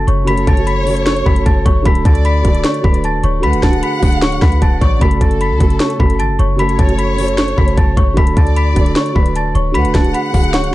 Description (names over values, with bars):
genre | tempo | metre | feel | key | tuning
hip hop, trap | 152 BPM | 4/4 | half-time | F# minor | A4 = 440 Hz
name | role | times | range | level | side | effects
worn celesta | melody | 0.0-10.7 s | C#5 to B6 | -20 LUFS | left 3 dB | tape echo
dark concert grand piano | accompaniment | 0.0-10.7 s | C#3 to B4 | -19 LUFS | right 2 dB | none
clean 808-style bass | bass | 0.0-10.7 s | C#1 to D2 | -16 LUFS | equal | none
trap drum kit | drums | 0.1-10.7 s | hi-hat, kick drum, snare drum | -14 LUFS | equal | vintage 12-bit sampler grit
warm symphonic violin section | second line | 0.3-10.7 s | A4 to F#5 | -24 LUFS | left 1 dB | tape echo
room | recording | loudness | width
studio ambience | dark, warm production | -11 LUFS | side -16 dB against mid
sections
0.0-10.7 A section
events
none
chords
0.0 F#m; 1.9 D; 5.0 F#m; 8.2 D